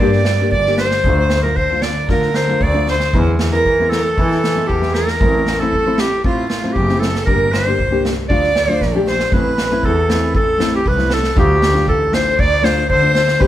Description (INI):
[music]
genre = klezmer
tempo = 116 BPM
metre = 4/4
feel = straight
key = D minor, D dorian from 9.3 s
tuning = A4 = 440 Hz
[part]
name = warm clarinet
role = melody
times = 0.0-13.5 s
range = F4 to D5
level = -18 LUFS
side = equal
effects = none
[part]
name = clear violin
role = second line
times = 0.0-13.5 s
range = F4 to D5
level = -23 LUFS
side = right 4 dB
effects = none
[part]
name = nylon-string guitar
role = accompaniment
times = 0.0-13.5 s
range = G#3 to G4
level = -22 LUFS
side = left 3 dB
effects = none
[part]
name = clear double bass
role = bass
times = 0.0-13.5 s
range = F#1 to E3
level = -19 LUFS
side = equal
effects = none
[part]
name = street-band drum kit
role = drums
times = 0.1-13.5 s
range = kick drum, snare drum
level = -20 LUFS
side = right 1 dB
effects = none
[sound]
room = moderate stone room reverb, RT60 1.5 s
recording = band playing live in one room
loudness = -13 LUFS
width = side -12 dB against mid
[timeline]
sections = 0.0-9.3 A section; 9.3-13.5 B section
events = speeding up 0.0-13.5; drum fill 8.8-9.3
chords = 0.0 Gm; 1.0 Dm; 3.1 E; 5.2 Am; 7.3 Gm; 8.3 Dm; 9.3 Am; 11.4 Dm